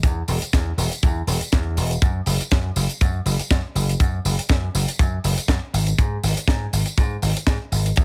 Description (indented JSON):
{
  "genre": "nu-disco, nu disco",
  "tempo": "121 BPM",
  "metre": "4/4",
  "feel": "swing 55% on 16ths",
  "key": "unclear",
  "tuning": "A4 = 440 Hz",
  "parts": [
    { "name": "vintage slap bass", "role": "bass", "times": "0.0-8.0 s", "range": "E1 to G#2", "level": "-25 LUFS", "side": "equal", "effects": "sidechain pumping" },
    { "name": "kick drum", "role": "drums", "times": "0.0-8.0 s", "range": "none", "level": "-21 LUFS", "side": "equal", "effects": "none" },
    { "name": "tight funk drum kit", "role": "drums", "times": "0.0-8.0 s", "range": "hi-hat, snare drum, tambourine", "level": "-29 LUFS", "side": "equal", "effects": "none" }
  ],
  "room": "little or no reverb",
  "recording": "none",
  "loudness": "-21 LUFS",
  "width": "mono",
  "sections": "0.0-8.0 A section",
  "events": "none",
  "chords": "none",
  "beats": "| 0.03 0.53 1.03 1.52 | 2.02 2.51 3.01 3.50 | 4.00 4.50 4.99 5.49 | 5.98 6.48 6.98 7.47 | 7.97"
}